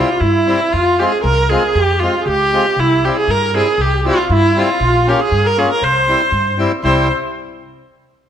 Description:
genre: klezmer.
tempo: 118 BPM.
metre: 2/4.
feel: straight.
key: C phrygian dominant.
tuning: A4 = 443 Hz.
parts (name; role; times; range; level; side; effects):
clear viola; melody; 0.0-7.1 s; E4 to C5; -16 LUFS; equal; none.
accordion; second line; 0.0-7.1 s; E4 to C5; -19 LUFS; right 3 dB; light tremolo tuning.
accordion; accompaniment; 0.0-7.1 s; G3 to F4; -20 LUFS; left 2 dB; none.
upright bass; bass; 0.2-7.1 s; Bb1 to G2; -18 LUFS; equal; none.
room: moderate recital hall reverb, RT60 1.6 s.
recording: none.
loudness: -12 LUFS.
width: side -9 dB against mid.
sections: 0.0-6.9 A section; 6.9-7.9 B section.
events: none.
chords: 0.0 C; 0.7 Fm; 2.8 C; 4.8 Bbm; 5.8 C.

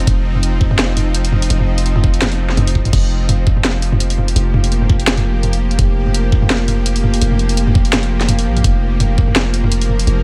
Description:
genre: half-time drum and bass.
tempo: 168 BPM.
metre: 4/4.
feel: swing 56% on 16ths, half-time.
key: unclear.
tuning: A4 = 440 Hz.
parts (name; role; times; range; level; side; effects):
bowed-like drone; sustained chords; 0.0-10.2 s; F3 to Bb4; -24 LUFS; equal; built-in reverb, sidechain pumping.
long sustained 808-style bass; bass; 0.0-10.2 s; F1 to Bb1; -19 LUFS; equal; none.
drum and bass drum kit; drums; 0.0-10.2 s; crash cymbal, hi-hat, snare drum, toms; -20 LUFS; equal; none.
electronic kick drum; drums; 0.1-9.3 s; none; -16 LUFS; equal; none.
room: digital ambience.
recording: none.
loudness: -15 LUFS.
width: mono.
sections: 0.0-10.2 A section.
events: none.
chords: 0.0 F5.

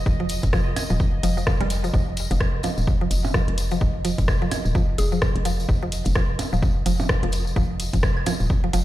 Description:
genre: minimal techno.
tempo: 128 BPM.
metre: 4/4.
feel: swing 59% on 16ths.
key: unclear.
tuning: A4 = 440 Hz.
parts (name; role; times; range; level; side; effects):
hollow knocking FM bass; bass; 0.0-8.8 s; Eb1 to F1; -24 LUFS; equal; sidechain pumping.
pulsing gated texture; texture; 0.0-8.8 s; Eb5; -37 LUFS; right 3 dB; chorus, built-in reverb, sidechain pumping.
electronic kick drum; drums; 0.1-8.6 s; none; -22 LUFS; equal; none.
tambourine; percussion; 0.1-8.8 s; none; -36 LUFS; left 2 dB; none.
mallet-like synth pluck; riff; 0.2-8.8 s; F3 to G3; -28 LUFS; equal; chorus, phaser, sidechain pumping, ping-pong delay.
garage drum kit; drums; 0.3-8.8 s; hi-hat, rim click; -30 LUFS; equal; none.
claves and percussion blips; percussion; 0.5-8.4 s; none; -32 LUFS; right 4 dB; overdrive, dub echo.
mallet-like synth pluck; melody; 5.0-5.4 s; Ab4; -32 LUFS; left 2 dB; chorus, phaser, dub echo.
room: light reverb.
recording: played on a big sound system in a bare room, large studio reverb.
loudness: -20 LUFS.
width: side -15 dB against mid.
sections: 0.0-8.8 A section.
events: none.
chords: 0.0 Ebsus2.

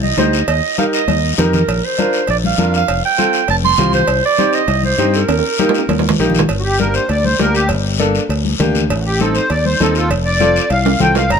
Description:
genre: latin, cumbia.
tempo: 200 BPM.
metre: 4/4.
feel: straight.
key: G minor.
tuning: A4 = 440 Hz.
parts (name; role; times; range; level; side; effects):
breathy clarinet; second line; 0.0-6.2 s; Bb4 to C6; -17 LUFS; right 6 dB; none.
fingered electric bass; bass; 0.0-11.4 s; F1 to G2; -17 LUFS; left 1 dB; none.
congas; percussion; 0.0-11.2 s; none; -22 LUFS; left 4 dB; none.
bright upright piano; accompaniment; 0.2-11.2 s; Bb3 to C5; -20 LUFS; equal; none.
guiro; percussion; 0.2-11.4 s; none; -24 LUFS; left 8 dB; none.
timbales and cowbell; percussion; 0.2-11.4 s; none; -22 LUFS; right 6 dB; none.
accordion; melody; 6.6-11.4 s; F4 to Bb5; -17 LUFS; equal; light tremolo tuning.
room: light reverb.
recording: none.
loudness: -12 LUFS.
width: side -6 dB against mid.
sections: 0.0-6.5 A section; 6.5-11.4 B section.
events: clarinet solo 0.0-6.5; drum fill 1.1-1.7, 5.3-6.5, 10.9-11.3; accordion solo 6.5-11.4.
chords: 0.5 Eb; 1.7 Bb; 2.9 F; 4.1 Cm; 5.3 Eb; 6.5 Gm; 8.9 Adim; 10.1 F.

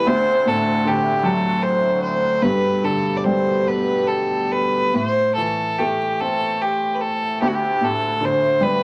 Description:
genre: celtic folk, Celtic slow air.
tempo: 46-52 BPM (dotted quarters).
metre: 6/8.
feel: rubato.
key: unclear.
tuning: A4 = 441 Hz.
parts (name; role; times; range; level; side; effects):
rich fiddle; melody; 0.0-8.8 s; F#4 to D5; -22 LUFS; equal; none.
clear upright piano; accompaniment; 0.0-8.8 s; D2 to C4; -25 LUFS; equal; none.
pedal harmonium; sustained chords; 0.0-4.9 s; B2 to F#5; -28 LUFS; equal; none.
room: wet club reverb, RT60 0.7 s.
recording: vinyl crackle.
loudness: -20 LUFS.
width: mono.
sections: 0.0-8.8 A section.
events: none.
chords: 0.1 D7; 2.4 Gadd9; 4.9 Am; 7.4 Dsus4.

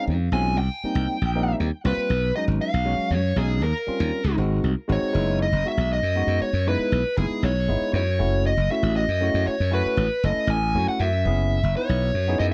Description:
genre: electric jazz fusion.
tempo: 79 BPM (dotted quarters).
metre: 6/8.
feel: straight.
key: unclear.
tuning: A4 = 440 Hz.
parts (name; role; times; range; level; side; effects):
dark smooth lead guitar; melody; 0.0-12.5 s; G#4 to Ab5; -28 LUFS; equal; overdrive, tape echo.
barky tine electric piano; accompaniment; 0.0-12.5 s; F#3 to B4; -30 LUFS; equal; phaser.
glassy slap bass; bass; 0.1-12.5 s; F#1 to F#2; -25 LUFS; equal; none.
room: little or no reverb.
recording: dry, close 1970s-style studio recording.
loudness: -23 LUFS.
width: mono.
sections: 0.0-5.1 A section; 5.1-12.5 B section.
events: none.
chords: 0.0 Bbm11 (rootless); 0.6 Cm7; 2.1 B69; 3.6 Eb13; 4.4 Ab7; 5.1 C#m7/F#; 8.2 B7sus4/F# (rootless); 11.3 C#m7/F#.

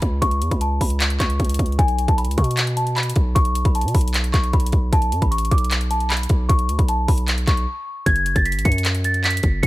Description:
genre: hip hop, trap.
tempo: 153 BPM.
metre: 4/4.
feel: half-time.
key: unclear.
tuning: A4 = 439 Hz.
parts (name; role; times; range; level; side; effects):
celesta; melody; 0.0-9.7 s; G#5 to C#7; -24 LUFS; equal; low-pass filter, ping-pong delay.
distorted 808-style bass; bass; 0.0-9.7 s; F#1 to B2; -21 LUFS; equal; distortion.
trap drum kit; drums; 0.0-9.7 s; handclaps, hi-hat, kick drum; -20 LUFS; equal; none.
room: digital ambience.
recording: none.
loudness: -17 LUFS.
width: side -17 dB against mid.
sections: 0.0-8.1 A section; 8.1-9.7 B section.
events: break 7.7-8.1.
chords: 0.0 C#7(no3); 1.8 N.C..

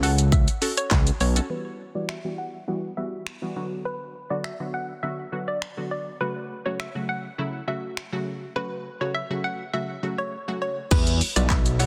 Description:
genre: dance-pop.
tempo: 102 BPM.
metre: 4/4.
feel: straight.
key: unclear.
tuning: A4 = 441 Hz.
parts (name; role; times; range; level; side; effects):
hollow square pluck; melody; 0.0-11.9 s; B4 to F#5; -34 LUFS; equal; chorus, phaser, sidechain pumping, low-pass filter, tape echo.
punchy chord stab; accompaniment; 0.0-11.9 s; C#3 to C#5; -33 LUFS; equal; chorus, sidechain pumping, low-pass filter.
fat analog bass; bass; 0.0-1.4, 10.9-11.9 s; B1 to E2; -24 LUFS; equal; sidechain pumping.
pop drum kit; drums; 0.0-11.9 s; crash cymbal, finger snaps, handclaps, hi-hat, kick drum, shaker, snare drum; -25 LUFS; equal; soft clipping on snare.
room: light reverb.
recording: dense, heavily limited modern master.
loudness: -27 LUFS.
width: mono.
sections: 0.0-1.5 A section; 1.5-10.9 B section.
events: drop 0.0-1.5; filter sweep 1.5-10.9.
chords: 0.0 F#m; 1.5 Emadd9; 3.6 Bm; 6.2 F#m; 10.9 Emadd9.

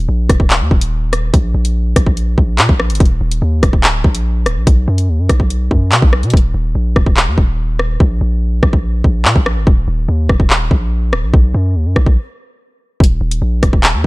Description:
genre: hip hop, drill.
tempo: 144 BPM.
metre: 4/4.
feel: half-time.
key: Eb harmonic minor.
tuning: A4 = 439 Hz.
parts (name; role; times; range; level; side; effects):
long sustained 808-style bass; bass; 0.0-14.1 s; D1 to B2; -15 LUFS; equal; none.
drill drum kit; drums; 0.3-14.1 s; handclaps, hi-hat, kick drum, rim click; -11 LUFS; equal; vintage 12-bit sampler grit.
room: digital ambience.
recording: none.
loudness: -11 LUFS.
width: side -22 dB against mid.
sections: 0.0-6.3 A section; 6.3-14.1 B section.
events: hi-hats muted 6.3-13.0; break 12.2-13.0.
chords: none.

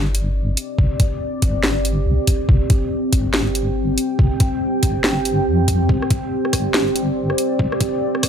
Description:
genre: deep dubstep.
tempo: 141 BPM.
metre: 4/4.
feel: swing 61% on 16ths, half-time.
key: unclear.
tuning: A4 = 441 Hz.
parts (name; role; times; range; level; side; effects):
deep dark ambient pad; sustained chords; 0.2-8.3 s; C4 to G5; -21 LUFS; equal; chorus, built-in reverb.
deep soft wobble bass; bass; 0.0-8.3 s; G1 to F2; -20 LUFS; equal; chorus.
garage drum kit; drums; 0.1-8.3 s; hi-hat, rim click, snare drum; -21 LUFS; equal; small room ambience.
electronic kick drum; drums; 0.8-8.3 s; none; -18 LUFS; equal; small room ambience.
room: digital ambience.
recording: dry, gritty hardware recording, high-pass filter.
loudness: -16 LUFS.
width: side -8 dB against mid.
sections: 0.0-8.3 A section.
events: build-up 0.0-8.3.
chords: 0.0 C5.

